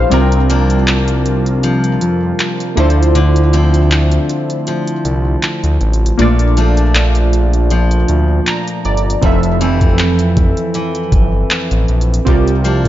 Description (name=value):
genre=contemporary R&B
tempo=79 BPM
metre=4/4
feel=swing 54% on 16ths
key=F major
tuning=A4 = 440 Hz
part: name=warm analog keys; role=accompaniment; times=0.0-12.9 s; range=F3 to Bb5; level=-18 LUFS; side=right 2 dB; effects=chorus, phaser
part: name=picked steel-string acoustic guitar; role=arpeggios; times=0.0-12.9 s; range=F2 to E4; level=-18 LUFS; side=left 2 dB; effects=none
part: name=smooth synth bass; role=bass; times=0.0-12.9 s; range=F1 to F2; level=-13 LUFS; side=equal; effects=none
part: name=smooth R&B drum kit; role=drums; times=0.1-12.9 s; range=handclaps, hi-hat, kick drum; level=-17 LUFS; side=equal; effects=none
room=little or no reverb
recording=dark, warm production, nothing above 7.4 kHz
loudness=-11 LUFS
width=side -13 dB against mid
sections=0.0-12.9 A section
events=break 0.0-9.2; synth keys fill 8.1-9.2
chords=0.1 C9sus4; 2.8 Dm9; 6.2 Bbmaj7; 9.2 Fmaj7; 12.3 C9sus4